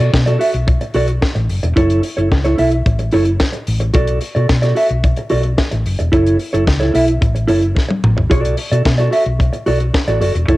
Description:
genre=disco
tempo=110 BPM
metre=4/4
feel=straight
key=B minor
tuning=A4 = 440 Hz
part: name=mellow electric guitar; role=accompaniment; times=0.0-10.6 s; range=E4 to E5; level=-17 LUFS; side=right 1 dB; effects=cassette tape
part: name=hollow-body short-scale fingered electric bass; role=bass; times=0.0-10.6 s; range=E1 to B2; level=-16 LUFS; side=equal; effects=none
part: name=tight funk drum kit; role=drums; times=0.0-10.6 s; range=hi-hat, kick drum, snare drum, toms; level=-18 LUFS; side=equal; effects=cassette tape
room=light reverb, small room ambience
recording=home recording on cassette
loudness=-13 LUFS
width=side -18 dB against mid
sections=0.0-10.6 A section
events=drum fill 7.8-8.3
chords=0.0 Bm7; 1.8 F#m7; 3.9 Bm7; 6.1 F#m7; 8.3 Bm7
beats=0.13 0.68 1.22 | 1.77 2.31 2.86 3.40 | 3.95 4.49 5.04 5.58 | 6.13 6.67 7.22 7.76 | 8.31 8.85 9.40 9.94 | 10.48

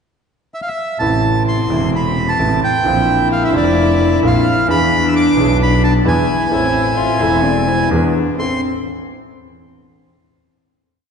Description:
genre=tango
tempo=130 BPM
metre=4/4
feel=rubato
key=A harmonic minor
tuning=A4 = 440 Hz
part: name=bandoneon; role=melody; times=0.5-8.6 s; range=D5 to E6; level=-18 LUFS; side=right 1 dB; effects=none
part: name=warm cello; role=second line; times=1.0-8.6 s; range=C4 to F4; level=-19 LUFS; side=left 4 dB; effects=none
part: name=warm grand piano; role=accompaniment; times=1.0-8.6 s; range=E1 to B4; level=-18 LUFS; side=right 2 dB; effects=none
part: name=clear double bass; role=bass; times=1.0-8.6 s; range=E1 to E2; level=-19 LUFS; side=right 1 dB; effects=none
part: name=mellow hollow silver concert flute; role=second line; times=6.4-8.6 s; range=B4 to E5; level=-25 LUFS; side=left 4 dB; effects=none
room=wet concert hall reverb, RT60 2.3 s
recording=recorded in a church or concert hall, nothing above 10.3 kHz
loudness=-12 LUFS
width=side -6 dB against mid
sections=0.0-1.0 pickup bar; 1.0-8.4 A section; 8.4-10.2 final chord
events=none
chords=0.0 N.C.; 1.0 Amadd9; 2.9 Bbadd9; 4.7 E7; 6.5 Am; 7.9 E7; 8.4 Am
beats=0.08 0.54 | 1.00 1.47 1.93 2.39 | 2.85 3.31 3.77 4.23 | 4.68 5.14 5.59 6.05 | 6.51 6.98 7.45 7.92 | 8.39

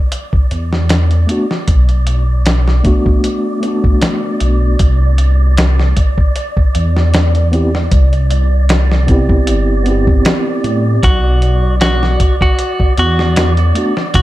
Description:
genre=trip hop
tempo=77 BPM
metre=4/4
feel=swing 54% on 16ths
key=B phrygian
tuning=A4 = 440 Hz
part: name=wind-like tuned noise texture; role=texture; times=0.0-14.2 s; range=D5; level=-24 LUFS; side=right 2 dB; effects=built-in reverb
part: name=dusty soul sampler-style drum kit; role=drums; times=0.1-14.2 s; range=hi-hat, kick drum, snare drum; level=-14 LUFS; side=equal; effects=none
part: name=dark detuned saw bass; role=bass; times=0.5-14.2 s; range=G1 to A2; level=-12 LUFS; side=equal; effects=none
part: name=mellow tine electric piano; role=accompaniment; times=1.3-13.9 s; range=A3 to G4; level=-18 LUFS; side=equal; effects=tremolo, vintage 12-bit sampler grit, tape echo
part: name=clean electric guitar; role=melody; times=11.0-14.2 s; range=F#4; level=-17 LUFS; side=equal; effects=tape echo
room=little or no reverb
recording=none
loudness=-10 LUFS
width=side -16 dB against mid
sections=0.0-14.2 A section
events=none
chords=0.0 Bm7; 4.8 Cmaj7; 11.0 Bm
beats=0.12 0.90 | 1.68 2.46 3.23 4.01 | 4.79 5.57 6.35 7.13 | 7.91 8.69 9.47 10.25 | 11.03 11.81 12.59 13.37 | 14.14

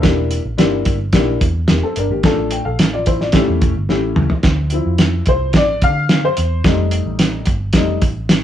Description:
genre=uptempo 1960s-style soul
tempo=109 BPM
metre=4/4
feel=straight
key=D minor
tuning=A4 = 441 Hz
part: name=dark upright piano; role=accompaniment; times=0.0-8.0 s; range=F3 to G5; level=-19 LUFS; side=left 3 dB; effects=none
part: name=vintage muted picked electric bass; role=bass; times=0.0-8.4 s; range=E1 to D3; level=-20 LUFS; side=equal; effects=none
part: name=cloth-damped thuddy drum kit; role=drums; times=0.0-8.4 s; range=hi-hat, kick drum, snare drum, toms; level=-15 LUFS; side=equal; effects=none
room=light reverb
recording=band playing live in one room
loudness=-13 LUFS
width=side -10 dB against mid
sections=0.0-4.4 A section; 4.4-8.4 B section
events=drum fill 3.9-4.4; upright piano solo 4.4-8.4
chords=0.0 Em7b5; 2.2 Dm/A; 3.3 A7; 4.4 Dm7; 6.6 F7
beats=| 0.04 0.59 1.14 1.70 | 2.25 2.80 3.35 3.90 | 4.45 5.00 5.55 6.10 | 6.65 7.20 7.75 8.30

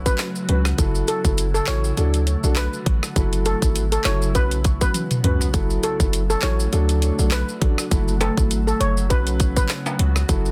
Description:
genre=dancehall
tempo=101 BPM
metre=4/4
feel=swing 56% on 16ths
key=F# minor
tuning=A4 = 440 Hz
part: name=glassy FM pad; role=sustained chords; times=0.0-10.5 s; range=C#3 to F#4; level=-33 LUFS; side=equal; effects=ensemble chorus, built-in reverb, sidechain pumping
part: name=warm 808-style bass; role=bass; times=0.0-10.5 s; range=F#1 to D2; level=-24 LUFS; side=equal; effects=none
part: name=steel pan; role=melody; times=0.1-9.7 s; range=A4 to C#5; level=-29 LUFS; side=equal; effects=tape echo
part: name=dark grand piano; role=accompaniment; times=0.1-10.5 s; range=F#3 to B4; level=-30 LUFS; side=equal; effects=none
part: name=island pop drum kit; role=drums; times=0.1-10.4 s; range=handclaps, hi-hat, kick drum, rim click, snare drum, toms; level=-24 LUFS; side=equal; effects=none
part: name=maracas and timbales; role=percussion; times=0.1-10.5 s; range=none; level=-33 LUFS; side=equal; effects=none
room=little or no reverb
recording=dense, heavily limited modern master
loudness=-20 LUFS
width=mono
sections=0.0-5.5 A section; 5.5-10.5 B section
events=drum fill 4.9-5.5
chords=0.0 Bsus2; 0.8 F#m7; 2.0 D; 3.2 F#m7; 4.3 Bsus2; 5.5 F#m7; 6.7 D; 7.9 F#m7; 9.1 Bsus2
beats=0.19 | 0.79 1.38 1.97 2.57 | 3.16 3.75 4.35 4.94 | 5.54 6.13 6.73 7.32 | 7.91 8.51 9.10 9.70 | 10.29

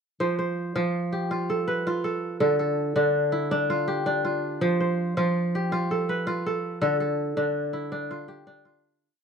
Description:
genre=west african traditional, West African string and xylophone music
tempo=109 BPM (dotted quarters)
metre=12/8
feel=straight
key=F lydian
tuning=A4 = 439 Hz
part: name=kora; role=solo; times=0.2-9.2 s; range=D3 to C5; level=-24 LUFS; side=equal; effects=none
room=studio reverb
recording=dry, close 1970s-style studio recording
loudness=-24 LUFS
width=side -6 dB against mid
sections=0.2-9.0 A section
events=fade-out 6.8-9.0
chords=0.2 F; 2.4 Dm; 4.6 F; 6.8 Dm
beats=| 0.20 0.75 1.30 1.85 | 2.40 2.95 3.50 4.05 | 4.61 5.16 5.71 6.26 | 6.81 7.37 7.92 8.47

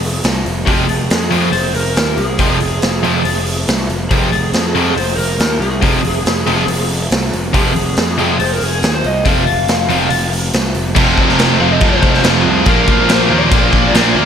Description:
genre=hard rock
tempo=140 BPM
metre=4/4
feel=straight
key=F minor, F dorian from 11.0 s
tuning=A4 = 440 Hz
part: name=fuzz picked electric bass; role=bass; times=0.0-14.3 s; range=F1 to F2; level=-19 LUFS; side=equal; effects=overdrive
part: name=raw garage drum kit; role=drums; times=0.0-14.0 s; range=crash cymbal, hi-hat, kick drum, snare drum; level=-16 LUFS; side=equal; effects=none
part: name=lead guitar through a small cranked amp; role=melody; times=0.7-14.1 s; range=Ab4 to F5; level=-20 LUFS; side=right 1 dB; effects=overdrive, slapback echo, tape echo
part: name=overdriven electric guitar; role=riff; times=0.7-14.3 s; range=F2 to Bb3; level=-19 LUFS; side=right 8 dB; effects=none
part: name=tight distorted guitar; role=riff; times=0.7-14.3 s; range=F2 to Bb3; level=-18 LUFS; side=left 9 dB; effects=distortion
part: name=heavy high-gain guitar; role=riff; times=11.0-14.3 s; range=F2 to F4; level=-20 LUFS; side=right 1 dB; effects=distortion
room=moderate scoring stage reverb, RT60 1.8 s, studio ambience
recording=big arena sound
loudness=-11 LUFS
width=side -8 dB against mid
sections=0.0-11.0 A section; 11.0-14.3 B section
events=none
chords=0.0 Fm; 12.7 Bb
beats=0.24 | 0.67 1.10 1.53 1.96 | 2.39 2.82 3.25 3.68 | 4.11 4.54 4.97 5.39 | 5.83 6.25 6.68 7.11 | 7.54 7.97 8.40 8.83 | 9.26 9.69 10.11 10.54 | 10.97 11.39 11.82 12.24 | 12.67 13.09 13.52 13.94

